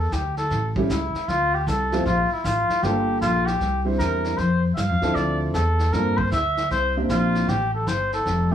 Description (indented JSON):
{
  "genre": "jazz, small-group swing and bop",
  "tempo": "155 BPM",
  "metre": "4/4",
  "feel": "swing 65% on 8ths",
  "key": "F major",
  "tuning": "A4 = 439 Hz",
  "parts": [
    { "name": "trumpet with cup mute", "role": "melody", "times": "0.0-8.5 s", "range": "E4 to F5", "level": "-24 LUFS", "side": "left 1 dB", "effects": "plate reverb" },
    { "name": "upright bass", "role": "bass", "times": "0.0-8.5 s", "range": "F1 to G2", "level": "-24 LUFS", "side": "equal", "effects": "none" },
    { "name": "vintage brush drum kit", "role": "drums", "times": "0.1-8.5 s", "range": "brushed snare drum, hi-hat, kick drum, snare drum", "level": "-32 LUFS", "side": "left 1 dB", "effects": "none" },
    { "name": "warm concert grand piano", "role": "accompaniment", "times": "0.8-8.5 s", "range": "F3 to E5", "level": "-25 LUFS", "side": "right 2 dB", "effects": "none" }
  ],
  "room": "moderate studio ambience, RT60 0.5 s",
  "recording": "heard from further back in the room, small room ambience",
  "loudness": "-20 LUFS",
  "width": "side -9 dB against mid",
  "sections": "0.0-8.5 A section",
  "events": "none",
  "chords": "0.0 Gsus2/D; 0.5 A7; 1.3 Dm7; 2.8 Gm7; 3.6 C9; 4.4 F69; 5.2 Dm9; 5.9 Gm11; 6.7 C7; 7.5 Fadd9"
}